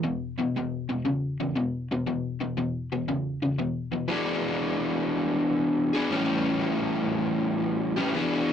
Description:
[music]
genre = rock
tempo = 119 BPM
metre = 4/4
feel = swing 67% on 8ths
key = unclear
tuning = A4 = 440 Hz
[part]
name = overdriven electric guitar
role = solo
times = 0.0-8.5 s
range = E2 to G#4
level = -25 LUFS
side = left 1 dB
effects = none
[sound]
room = wet booth ambience, RT60 0.3 s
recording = rough rehearsal-room recording, nothing above 10.4 kHz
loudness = -25 LUFS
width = side -8 dB against mid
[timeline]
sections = 0.0-4.1 A section; 4.1-8.5 B section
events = none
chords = 0.1 E5; 4.1 E7; 6.1 A7

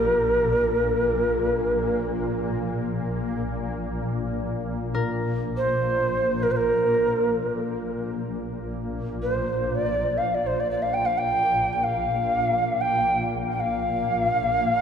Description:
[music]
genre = world meditative, free-time meditation music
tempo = free time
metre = none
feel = none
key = unclear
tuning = A4 = 440 Hz
[part]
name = mellow Native American-style cedar flute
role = melody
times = 0.0-14.8 s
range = Bb4 to G5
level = -23 LUFS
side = right 1 dB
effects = diffuse ambient delay
[part]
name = shimmering ambient pad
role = drone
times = 0.0-14.8 s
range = Bb1 to Bb2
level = -27 LUFS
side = left 1 dB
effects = chorus, built-in reverb
[part]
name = concert harp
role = texture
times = 0.0-8.3 s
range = G4 to Bb4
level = -36 LUFS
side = left 4 dB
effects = none
[sound]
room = wet church reverb, RT60 3.3 s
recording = dark, warm production, faint mains hum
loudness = -22 LUFS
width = side -7 dB against mid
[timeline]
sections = 0.0-7.8 A section; 7.8-14.8 A section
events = none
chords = none

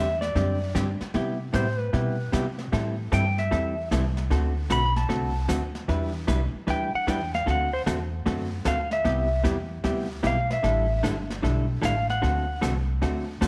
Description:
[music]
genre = country, western swing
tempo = 152 BPM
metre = 4/4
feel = swing 65% on 8ths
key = unclear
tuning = A4 = 438 Hz
[part]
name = clean lap steel guitar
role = melody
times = 0.0-12.6 s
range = B4 to B5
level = -30 LUFS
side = equal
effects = slapback echo
[part]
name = vintage hollow-body jazz guitar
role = accompaniment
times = 0.0-13.5 s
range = C3 to B4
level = -31 LUFS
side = equal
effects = none
[part]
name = upright bass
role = bass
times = 0.0-13.5 s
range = G1 to C3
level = -30 LUFS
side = equal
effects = none
[part]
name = jazz brush drum kit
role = drums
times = 0.2-13.5 s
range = brushed snare drum, hi-hat, kick drum, snare drum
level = -36 LUFS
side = equal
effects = none
[sound]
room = moderate echo chamber reverb, RT60 1.5 s, small room ambience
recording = none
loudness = -26 LUFS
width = mono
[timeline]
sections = 0.0-13.5 A section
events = electric slide guitar solo 0.0-13.5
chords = 0.0 D7sus4; 1.1 Cmaj7; 2.7 Am7; 4.3 D7; 5.9 Em7; 7.5 D7; 9.1 Cmaj9; 10.6 A7sus4; 12.2 D7

